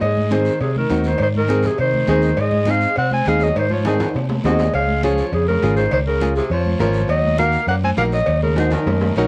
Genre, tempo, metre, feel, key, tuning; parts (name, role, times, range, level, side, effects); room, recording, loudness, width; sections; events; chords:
latin, cumbia; 203 BPM; 4/4; straight; A4 = 440 Hz
breathy clarinet; melody; 0.0-9.3 s; Ab4 to Ab5; -23 LUFS; equal
clear tenor saxophone; second line; 0.0-9.3 s; C3 to Db4; -28 LUFS; equal
fingered electric bass; bass; 0.0-9.3 s; Ab1 to C3; -23 LUFS; equal
congas; percussion; 0.0-9.1 s; -30 LUFS; equal
cowbell and timbales; percussion; 0.0-9.3 s; -30 LUFS; equal
guiro; percussion; 0.0-9.3 s; -41 LUFS; equal
nylon-string guitar; accompaniment; 0.3-9.3 s; C4 to Bb4; -24 LUFS; equal
moderate studio reverb, RT60 0.7 s; worn, warbling old tape, cassette tape, warbly pitch drift; -18 LUFS; mono
0.0-9.3 A section
drum fill 3.9-4.7, 8.6-9.3
0.0 Ab; 4.7 Db; 7.1 Ebm